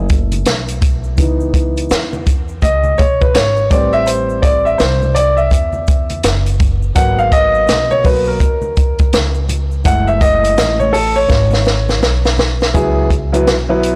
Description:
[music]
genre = hip hop, jazz-hop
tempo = 83 BPM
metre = 4/4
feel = swing 62% on 16ths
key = C# minor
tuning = A4 = 440 Hz
[part]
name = dark baby grand piano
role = accompaniment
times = 0.0-14.0 s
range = E3 to F#5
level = -17 LUFS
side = equal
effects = none
[part]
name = upright bass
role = bass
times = 0.0-14.0 s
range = F#1 to E2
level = -20 LUFS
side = equal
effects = tube saturation
[part]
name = compact cocktail drum kit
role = drums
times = 0.1-14.0 s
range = hi-hat, kick drum, snare drum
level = -17 LUFS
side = equal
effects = none
[part]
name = egg shaker and congas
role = percussion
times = 0.1-12.7 s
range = none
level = -32 LUFS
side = equal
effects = none
[sound]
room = light reverb, small room ambience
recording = blown-out, overdriven recording, overdrive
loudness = -14 LUFS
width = mono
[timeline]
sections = 0.0-12.7 A section; 12.7-14.0 B section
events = grand piano solo 0.0-12.7; drum fill 11.3-12.7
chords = 0.0 F#m7; 1.2 C#m9; 3.7 Am9; 7.0 G#m9; 9.9 F#m9; 12.7 C#m7

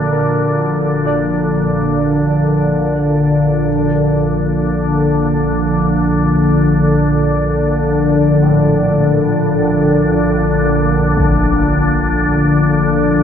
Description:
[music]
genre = dark ambient drone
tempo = free time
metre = none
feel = none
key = Bb major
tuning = A4 = 439 Hz
[part]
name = deep dark ambient pad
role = sustained chords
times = 0.0-3.7 s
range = Gb4 to F5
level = -37 LUFS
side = right 1 dB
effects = none
[part]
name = warm baby grand piano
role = arpeggios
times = 0.0-13.2 s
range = A2 to D5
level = -26 LUFS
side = right 3 dB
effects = analog chorus, analog delay
[part]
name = organ-like drone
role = drone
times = 0.0-13.2 s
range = Bb1 to D3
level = -12 LUFS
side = left 1 dB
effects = ensemble chorus, built-in reverb
[part]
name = impact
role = percussion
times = 11.2-11.4 s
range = none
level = -21 LUFS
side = equal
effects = low-pass filter on sfx
[sound]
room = moderate plate reverb, RT60 2.2 s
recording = dreamy mix soaked in reverb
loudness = -12 LUFS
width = side -8 dB against mid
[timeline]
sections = 0.0-3.7 A section; 3.7-13.2 B section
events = fade-in on impacts and reversed cymbals 3.7-13.2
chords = 0.0 Gbmaj7#5/Bb; 3.7 Bb

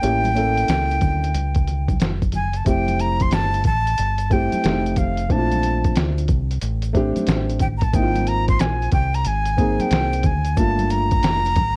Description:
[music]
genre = hip hop, jazz-hop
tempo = 91 BPM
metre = 4/4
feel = swing 65% on 16ths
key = unclear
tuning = A4 = 440 Hz
[part]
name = breathy bright jazz flute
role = melody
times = 0.0-11.8 s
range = F5 to C6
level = -26 LUFS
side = equal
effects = plate reverb
[part]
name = dark upright piano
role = accompaniment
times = 0.0-11.5 s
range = A3 to A4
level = -26 LUFS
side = equal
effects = plate reverb
[part]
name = deep dub fingered electric bass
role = bass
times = 0.0-11.8 s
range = F1 to D2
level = -25 LUFS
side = equal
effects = transformer saturation
[part]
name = lo-fi sampler-style drum kit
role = drums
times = 0.0-11.8 s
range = hi-hat, kick drum, snare drum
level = -24 LUFS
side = equal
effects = overdrive
[part]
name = maracas and congas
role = percussion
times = 0.0-11.8 s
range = none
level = -35 LUFS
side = equal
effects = none
[sound]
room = light reverb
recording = worn, warbling old tape, cassette tape, warbly pitch drift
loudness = -20 LUFS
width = mono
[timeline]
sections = 0.0-2.7 A section; 2.7-11.8 B section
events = none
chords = 0.0 A7b9; 2.7 Fmaj9; 4.6 F7; 5.3 Bbmaj9; 7.9 Ab6; 10.6 Gm9

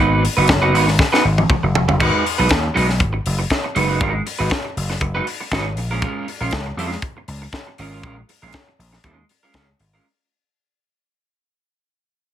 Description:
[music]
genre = disco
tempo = 119 BPM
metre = 4/4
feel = straight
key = G# dorian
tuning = A4 = 439 Hz
[part]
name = electric guitar at the edge of break-up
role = accompaniment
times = 0.0-10.1 s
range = G#3 to B4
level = -20 LUFS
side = right 3 dB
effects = wide subtle chorus
[part]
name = vintage slap bass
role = bass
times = 0.0-10.0 s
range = E#1 to E#2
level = -20 LUFS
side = equal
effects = none
[part]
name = tight funk drum kit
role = drums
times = 0.2-9.9 s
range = crash cymbal, hi-hat, kick drum, snare drum, toms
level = -20 LUFS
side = left 1 dB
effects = none
[sound]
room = light reverb, small room reverb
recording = none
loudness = -16 LUFS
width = side -10 dB against mid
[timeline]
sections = 0.0-2.0 A section; 2.0-10.0 B section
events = drum fill 1.0-2.0; fade-out 2.0-10.0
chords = 0.0 G#m7; 5.8 A#m7

